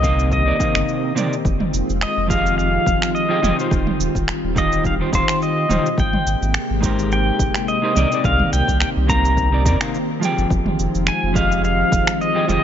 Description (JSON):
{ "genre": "sunset chillout", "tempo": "106 BPM", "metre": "4/4", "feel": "swing 55% on 16ths", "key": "C minor", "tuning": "A4 = 440 Hz", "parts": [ { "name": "pedal steel guitar", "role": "melody", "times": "0.0-12.6 s", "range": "C5 to Bb5", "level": "-21 LUFS", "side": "left 2 dB", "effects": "ping-pong delay" }, { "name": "clean electric guitar", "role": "accompaniment", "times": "0.0-12.6 s", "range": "C3 to G5", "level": "-23 LUFS", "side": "right 1 dB", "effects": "auto-pan, ping-pong delay" }, { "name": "soft string machine", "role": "sustained chords", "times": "0.0-12.6 s", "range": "C3 to G4", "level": "-24 LUFS", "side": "equal", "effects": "ensemble chorus" }, { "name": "warm sub bass", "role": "bass", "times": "0.0-12.6 s", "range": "Eb1 to F2", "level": "-21 LUFS", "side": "equal", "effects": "none" }, { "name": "deep house drum kit", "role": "drums", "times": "0.0-12.6 s", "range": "cabasa, finger snaps, toms", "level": "-24 LUFS", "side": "right 2 dB", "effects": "overdrive" }, { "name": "electronic kick drum", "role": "drums", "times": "0.0-12.0 s", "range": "none", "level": "-23 LUFS", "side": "equal", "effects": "overdrive" } ], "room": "light reverb", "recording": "nothing above 7.5 kHz", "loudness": "-16 LUFS", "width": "side -9 dB against mid", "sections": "0.0-12.6 A section", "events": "none", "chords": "0.0 Cm7; 1.4 Fm7; 3.7 Eb69; 6.0 Abmaj9; 8.0 Cm7; 10.5 Fm7", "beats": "0.31 0.88 | 1.45 2.01 2.58 3.14 | 3.71 4.28 4.84 5.41 | 5.97 6.54 7.11 7.67 | 8.24 8.80 9.37 9.94 | 10.50 11.07 11.63 12.20" }